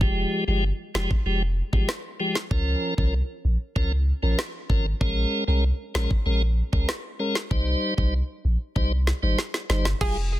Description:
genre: dancehall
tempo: 96 BPM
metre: 4/4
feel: straight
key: unclear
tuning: A4 = 435 Hz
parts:
  - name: tonewheel organ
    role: accompaniment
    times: 0.0-10.2 s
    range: F3 to C5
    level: -28 LUFS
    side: equal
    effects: slow rotary speaker
  - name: punchy sub bass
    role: bass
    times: 0.0-10.4 s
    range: F1 to Db2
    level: -24 LUFS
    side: equal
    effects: none
  - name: island pop drum kit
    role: drums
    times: 0.0-10.2 s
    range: crash cymbal, hi-hat, kick drum, rim click, snare drum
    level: -25 LUFS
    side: equal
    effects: none
  - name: hollow square pluck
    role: melody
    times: 10.0-10.1 s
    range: Ab4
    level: -29 LUFS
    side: right 4 dB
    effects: chorus, tape echo
room: digital ambience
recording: dense, heavily limited modern master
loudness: -22 LUFS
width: side -15 dB against mid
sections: 0.0-10.0 A section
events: drum fill 9.4-10.0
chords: 0.0 Fmadd9; 2.5 Db6; 5.0 Bbm7; 7.5 Cm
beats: | 0.01 0.64 1.26 1.89 | 2.51 3.13 3.76 4.38 | 5.01 5.63 6.26 6.88 | 7.51 8.13 8.76 9.38 | 10.01

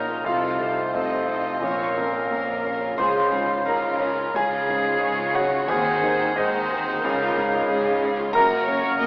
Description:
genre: classical, romantic movement for piano and orchestra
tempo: 89 BPM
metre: 4/4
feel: rubato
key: unclear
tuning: A4 = 440 Hz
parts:
  - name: clear grand piano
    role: melody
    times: 0.0-9.1 s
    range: Bb1 to C6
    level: -25 LUFS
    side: equal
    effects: none
  - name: warm symphonic violin section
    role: melody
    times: 0.0-9.1 s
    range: F4 to Bb4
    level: -36 LUFS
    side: left 1 dB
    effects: none
  - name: dark symphonic violin section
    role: second line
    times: 0.0-9.1 s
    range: Ab3 to F4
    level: -33 LUFS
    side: equal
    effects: none
  - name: silver concert flute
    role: second line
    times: 0.0-9.1 s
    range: F5 to Bb5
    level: -29 LUFS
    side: equal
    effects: none
  - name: warm clarinet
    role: second line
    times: 0.0-9.1 s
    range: Ab4 to Bb4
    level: -31 LUFS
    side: equal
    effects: none
  - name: warm oboe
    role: second line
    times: 0.0-9.1 s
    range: C4 to C5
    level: -27 LUFS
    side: equal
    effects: none
  - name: dark bassoon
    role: accompaniment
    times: 0.0-9.1 s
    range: Bb3 to Eb4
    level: -30 LUFS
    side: right 1 dB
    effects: none
  - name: warm symphonic viola section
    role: accompaniment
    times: 0.0-9.1 s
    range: F4 to Eb5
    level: -30 LUFS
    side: equal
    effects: none
  - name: rich symphonic cello section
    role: bass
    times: 0.0-9.1 s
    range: Gb2 to Eb3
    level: -34 LUFS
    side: equal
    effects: none
  - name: rich symphonic double bass section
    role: bass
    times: 0.0-9.1 s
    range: Gb1 to Eb2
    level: -38 LUFS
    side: equal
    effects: none
room: moderate scoring stage reverb, RT60 1.6 s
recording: AM radio sound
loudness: -20 LUFS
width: side -26 dB against mid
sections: 0.0-9.1 A section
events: none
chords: 0.3 F7/C; 1.6 Bbm; 3.0 Db; 5.7 Ab7/Eb; 7.0 Db; 8.3 Gb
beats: | 0.25 0.94 1.62 2.31 | 2.99 3.66 4.36 5.02 | 5.69 6.37 7.04 7.70 | 8.34 8.98

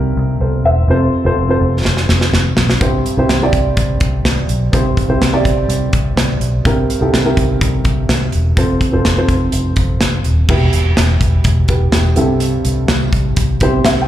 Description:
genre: piano-driven pop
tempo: 125 BPM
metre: 4/4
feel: straight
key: C major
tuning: A4 = 439 Hz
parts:
  - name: dark upright piano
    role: accompaniment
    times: 0.0-14.1 s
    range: G2 to G5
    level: -17 LUFS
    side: right 1 dB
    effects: slapback echo
  - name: vintage muted fingered electric bass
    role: bass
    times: 0.0-14.0 s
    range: Eb1 to C2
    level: -16 LUFS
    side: equal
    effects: none
  - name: modern studio drum kit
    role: drums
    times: 1.9-14.0 s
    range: crash cymbal, hi-hat, kick drum, snare drum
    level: -16 LUFS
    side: equal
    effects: none
room: little or no reverb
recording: live gig heard through the venue's PA, club reverb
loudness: -12 LUFS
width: side -12 dB against mid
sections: 0.0-10.5 A section; 10.5-14.1 B section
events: drum fill 1.9-2.8; upright piano fill 13.6-14.1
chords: 0.0 C7; 0.9 F; 2.8 C; 6.7 C7; 8.6 F; 10.5 Em; 12.2 C6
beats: 0.41 | 0.89 1.37 1.85 2.33 | 2.81 3.29 3.77 4.25 | 4.73 5.21 5.69 6.17 | 6.65 7.13 7.61 8.09 | 8.57 9.05 9.53 10.01 | 10.49 10.97 11.45 11.93 | 12.41 12.89 13.37 13.85

